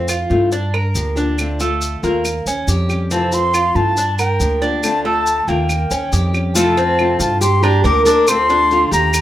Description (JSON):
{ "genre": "latin, Cuban son and guajira", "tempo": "139 BPM", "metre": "4/4", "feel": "straight", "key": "F major", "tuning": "A4 = 440 Hz", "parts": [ { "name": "nylon-string guitar", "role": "accompaniment", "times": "0.0-9.2 s", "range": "C3 to G4", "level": "-23 LUFS", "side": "left 4 dB", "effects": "none" }, { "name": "Cuban tres", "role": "arpeggios", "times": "0.0-8.9 s", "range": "A3 to Bb4", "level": "-21 LUFS", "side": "right 2 dB", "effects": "none" }, { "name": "upright bass", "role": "bass", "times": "0.0-9.2 s", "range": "D2 to G2", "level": "-20 LUFS", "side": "equal", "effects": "none" }, { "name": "claves", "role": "percussion", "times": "0.1-9.2 s", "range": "none", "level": "-25 LUFS", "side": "right 4 dB", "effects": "none" }, { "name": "maracas", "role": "percussion", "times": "0.1-9.2 s", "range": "none", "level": "-25 LUFS", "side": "left 2 dB", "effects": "none" }, { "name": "silver concert flute", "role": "melody", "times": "3.1-9.2 s", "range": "G5 to D6", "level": "-17 LUFS", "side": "left 1 dB", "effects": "none" }, { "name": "nylon-string guitar", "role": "second line", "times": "6.6-9.2 s", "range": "F4 to Bb4", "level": "-18 LUFS", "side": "equal", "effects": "none" } ], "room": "wet studio reverb, RT60 0.5 s", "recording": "rough home demo mix", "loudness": "-14 LUFS", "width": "side -13 dB against mid", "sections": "0.0-6.6 A section; 6.6-9.2 B section", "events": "none", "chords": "0.0 Fmaj7; 0.5 Gm7; 1.4 Dm7; 2.2 Eb7; 3.1 Fmaj7; 4.0 Gm7; 4.8 Dm7; 5.7 Eb7; 6.6 Fmaj7; 7.4 Gm7; 8.3 Dm7" }